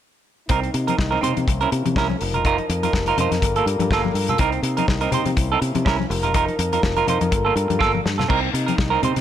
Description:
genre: disco.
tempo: 123 BPM.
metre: 4/4.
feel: swing 56% on 16ths.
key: C dorian.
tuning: A4 = 440 Hz.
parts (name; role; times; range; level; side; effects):
semi-hollow electric guitar; accompaniment; 0.5-9.2 s; Bb3 to C5; -22 LUFS; right 7 dB; none.
warm French horn section; sustained chords; 0.5-9.2 s; F3 to Bb4; -26 LUFS; left 2 dB; none.
fingered electric bass; bass; 0.5-9.2 s; F1 to C3; -24 LUFS; left 1 dB; none.
damped 70s drum kit; drums; 0.5-9.2 s; crash cymbal, hi-hat, kick drum, snare drum; -24 LUFS; left 2 dB; none.
congas; percussion; 0.5-9.2 s; none; -29 LUFS; left 8 dB; none.
room: light reverb, small room ambience.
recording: none.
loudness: -18 LUFS.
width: side -10 dB against mid.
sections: 0.5-8.3 A section.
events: drum fill 7.8-8.3.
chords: 0.5 Cm7; 1.5 C7b9; 2.2 F7sus4; 3.4 Gm9; 4.4 Cm7; 5.4 C7b9; 6.1 F7sus4; 7.3 Gm9; 8.3 Cm7.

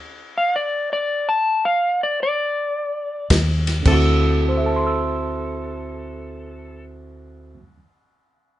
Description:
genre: electric blues shuffle.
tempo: 108 BPM.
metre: 4/4.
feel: swing 66% on 8ths.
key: D mixolydian.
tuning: A4 = 440 Hz.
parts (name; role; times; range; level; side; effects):
electric slide guitar; melody; 0.4-6.8 s; A4 to A5; -21 LUFS; left 1 dB; none.
vintage muted fingered electric bass; bass; 3.3-7.5 s; D2 to Eb2; -20 LUFS; equal; none.
warm soul drum kit; drums; 3.3-4.0 s; crash cymbal, kick drum, ride cymbal, snare drum; -21 LUFS; equal; none.
overdriven reed electric piano; accompaniment; 3.8-7.8 s; D2 to E6; -24 LUFS; right 2 dB; none.
room: moderate small room ambience, RT60 0.5 s.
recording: band playing live in one room, nothing above 10.7 kHz.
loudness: -18 LUFS.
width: side -14 dB against mid.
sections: 0.0-3.9 A section; 3.9-6.1 B section.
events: stop 0.0-3.3.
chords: 0.0 N.C.; 3.9 D9.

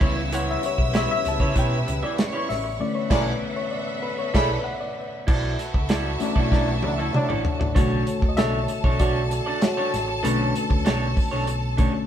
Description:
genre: lush 1970s-style soul.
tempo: 97 BPM.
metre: 4/4.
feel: straight.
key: B minor.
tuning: A4 = 439 Hz.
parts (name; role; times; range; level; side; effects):
rich studio violin section; second line; 0.0-12.1 s; F#4 to E6; -30 LUFS; equal; none.
reed electric piano; accompaniment; 0.0-12.1 s; C#3 to A5; -27 LUFS; left 3 dB; none.
warm studio string section; sustained chords; 0.0-7.7 s; C#3 to F#5; -34 LUFS; equal; none.
electric guitar through a small old amp; riff; 0.0-12.0 s; D4 to E5; -30 LUFS; right 3 dB; none.
fingered electric bass; bass; 0.0-11.9 s; A1 to C#3; -28 LUFS; equal; none.
warm soul drum kit; drums; 0.0-11.9 s; crash cymbal, hi-hat, kick drum, snare drum, toms; -24 LUFS; equal; none.
warm trombone section; stabs; 3.1-7.7 s; A2 to E4; -29 LUFS; right 1 dB; none.
room: moderate stone room reverb, RT60 1.2 s.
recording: band playing live in one room.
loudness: -21 LUFS.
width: side -10 dB against mid.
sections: 0.0-5.3 A section; 5.3-7.8 B section; 7.8-12.1 C section.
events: reed electric piano solo 0.0-5.3, 7.8-12.1; band accent 2.8-5.3; drum fill 6.5-7.8.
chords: 0.0 C#m7b5; 2.8 Bm11; 7.8 Bm9.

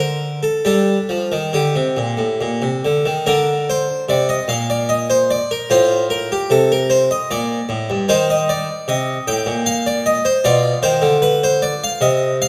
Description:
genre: classical, baroque-style suite movement for harpsichord.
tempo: 67-78 BPM.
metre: 3/4.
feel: rubato.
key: G minor, Bb major from 3.3 s.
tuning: A4 = 440 Hz.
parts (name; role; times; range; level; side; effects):
harpsichord; solo; 0.0-12.5 s; G2 to G5; -17 LUFS; equal; none.
room: moderate recital hall reverb, RT60 1.8 s.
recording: none.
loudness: -17 LUFS.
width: mono.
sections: 0.0-3.3 A section; 3.3-12.5 A section.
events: none.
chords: 0.0 N.C.; 0.6 Gm; 3.3 Bb; 5.7 F/A; 7.3 Bb; 8.1 Cm; 10.4 Bdim.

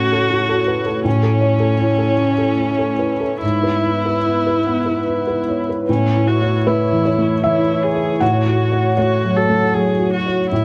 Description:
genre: neoclassical piano and strings.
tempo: 71-80 BPM.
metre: 3/4.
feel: rubato.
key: A major.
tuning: A4 = 440 Hz.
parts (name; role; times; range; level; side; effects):
dark viola; accompaniment; 0.0-10.6 s; C#4 to A4; -22 LUFS; equal; none.
felt-muted upright piano; accompaniment; 0.0-10.6 s; G#2 to F#5; -20 LUFS; equal; none.
airy breathy pad; sustained chords; 0.0-10.6 s; A3 to E5; -26 LUFS; equal; chorus.
room: light reverb.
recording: close, detailed microphones.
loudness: -17 LUFS.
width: mono.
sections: 0.0-5.9 A section; 5.9-10.6 B section.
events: none.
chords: 0.0 F#m/A; 1.1 A; 3.4 E/G#; 5.9 A; 8.2 F#m/A.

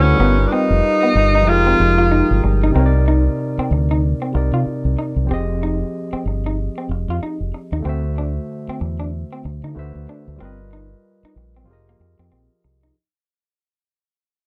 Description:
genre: R&B.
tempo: 94 BPM.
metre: 4/4.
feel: swing 60% on 16ths.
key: F dorian.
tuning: A4 = 438 Hz.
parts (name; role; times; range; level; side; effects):
warm tenor saxophone; melody; 0.0-2.4 s; Db4 to F4; -19 LUFS; equal; none.
electric guitar through a small old amp; second line; 0.0-12.9 s; Bb3 to F4; -26 LUFS; equal; none.
barky tine electric piano; accompaniment; 0.0-13.0 s; C3 to E5; -26 LUFS; equal; overdrive.
mellow tonewheel organ; sustained chords; 0.0-2.7 s; Ab3 to E6; -30 LUFS; equal; fast rotary speaker.
deep dub fingered electric bass; bass; 0.0-12.9 s; F1 to D3; -20 LUFS; equal; none.
room: little or no reverb.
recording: dry, close 1970s-style studio recording.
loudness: -18 LUFS.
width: mono.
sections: 0.0-2.7 A section; 2.7-12.9 B section.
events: fade-out 2.7-12.9.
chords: 0.2 G7alt; 1.5 Fm11; 2.7 Cm9; 5.3 Fm9; 7.8 D7; 9.8 D13; 10.4 G7alt; 11.7 Fm11.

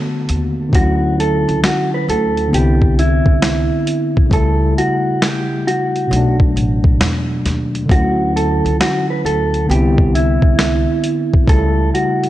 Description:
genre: lo-fi hip hop.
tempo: 67 BPM.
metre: 4/4.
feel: swing 66% on 16ths.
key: D major.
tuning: A4 = 440 Hz.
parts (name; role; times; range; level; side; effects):
tine electric piano; accompaniment; 0.0-12.3 s; B2 to F#4; -18 LUFS; equal; medium stereo tremolo, cassette tape, low-pass filter.
upright bass; bass; 0.3-11.9 s; A1 to E2; -18 LUFS; equal; none.
boom bap sampler-style drum kit; drums; 0.3-12.3 s; hi-hat, kick drum, snare drum; -16 LUFS; equal; none.
mellow electric guitar; melody; 0.8-12.3 s; E4 to B4; -19 LUFS; right 2 dB; spring reverb, low-pass filter.
room: little or no reverb.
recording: dry, gritty hardware recording, cassette tape.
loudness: -13 LUFS.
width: side -14 dB against mid.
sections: 0.0-12.3 A section.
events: none.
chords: 0.0 Bm7; 0.7 Dmaj9; 2.5 Cmaj9; 4.3 A7/C#; 6.1 Bm7; 7.9 Dmaj9; 9.7 Cmaj9; 11.5 A7/C#.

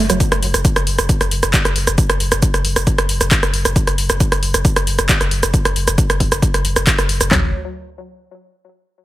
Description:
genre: driving peak-time techno.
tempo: 135 BPM.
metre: 4/4.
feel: straight.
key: unclear.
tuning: A4 = 439 Hz.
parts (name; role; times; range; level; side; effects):
woody wave-folded pluck; riff; 0.0-0.1, 7.3-7.5 s; F#3; -22 LUFS; right 2 dB; chorus, sidechain pumping, tape echo.
warm sub bass; bass; 0.0-7.5 s; F#1; -21 LUFS; equal; sidechain pumping, low-pass filter.
punchy analog drum machine; drums; 0.1-7.3 s; handclaps, hi-hat, rim click, shaker; -17 LUFS; right 1 dB; none.
punchy analog drum machine; drums; 0.2-7.4 s; handclaps, kick drum, toms; -16 LUFS; equal; none.
room: light reverb, digital ambience.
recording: heavily compressed radio sound, multiband compression.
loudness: -13 LUFS.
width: side -16 dB against mid.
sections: 0.0-7.3 A section; 7.3-9.0 B section.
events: none.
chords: none.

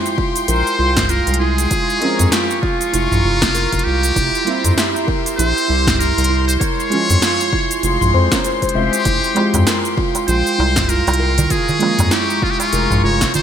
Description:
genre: organic downtempo.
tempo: 98 BPM.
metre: 4/4.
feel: swing 58% on 16ths.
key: F harmonic minor.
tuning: A4 = 440 Hz.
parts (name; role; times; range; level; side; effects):
trumpet with metal mute; melody; 0.0-13.4 s; F4 to Db5; -20 LUFS; left 1 dB; ping-pong delay.
deep mellow chord stab; accompaniment; 0.0-13.4 s; F3 to Bb4; -24 LUFS; right 1 dB; chorus, sidechain pumping, digital delay.
dark chamber string section; sustained chords; 0.0-13.4 s; Ab3 to Db6; -23 LUFS; left 3 dB; sidechain pumping.
handpan; arpeggios; 0.0-13.4 s; E4 to E5; -21 LUFS; right 5 dB; digital delay.
deep house drum kit; drums; 0.1-13.4 s; hi-hat, shaker, snare drum, toms; -20 LUFS; equal; gated reverb.
electronic kick drum; drums; 0.2-13.3 s; none; -22 LUFS; left 1 dB; none.
round analog bass; bass; 0.5-13.4 s; F1 to F2; -18 LUFS; left 1 dB; none.
darbuka; percussion; 9.1-13.4 s; none; -23 LUFS; right 3 dB; none.
room: moderate lush hall reverb, RT60 2.0 s.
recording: bright 1980s-style digital production.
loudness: -14 LUFS.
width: side -9 dB against mid.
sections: 0.0-13.4 A section.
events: none.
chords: 0.0 Fmadd9; 1.7 Bbm7/F; 4.2 C7/F; 6.6 Dbmaj7/F; 9.1 Fmadd9; 11.5 Bbm7/F.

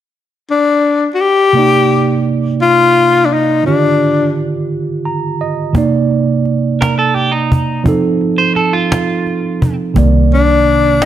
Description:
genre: slow six-eight R&B.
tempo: 57 BPM (dotted quarters).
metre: 6/8.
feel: straight.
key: C dorian.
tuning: A4 = 438 Hz.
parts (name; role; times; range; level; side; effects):
breathy tenor saxophone; melody; 0.5-4.4, 10.3-11.0 s; D4 to G4; -11 LUFS; left 4 dB; slapback echo.
tine electric piano; accompaniment; 1.5-11.1 s; C3 to Bb5; -14 LUFS; right 4 dB; none.
cajon; drums; 5.7-11.1 s; none; -16 LUFS; equal; none.
electric guitar at the edge of break-up; second line; 6.8-9.7 s; Eb4 to C5; -16 LUFS; right 4 dB; none.
vintage muted fingered electric bass; bass; 10.0-11.1 s; C2; -12 LUFS; left 1 dB; none.
room: light reverb, studio reverb.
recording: none.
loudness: -10 LUFS.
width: side -11 dB against mid.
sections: 0.0-1.5 A section; 1.5-10.0 B section; 10.0-11.1 C section.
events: tine electric piano fill 4.7-5.8.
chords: 0.0 N.C.; 1.5 Cm9; 3.6 Ebmaj9; 5.8 Cm9; 7.9 F7; 10.0 Cm9.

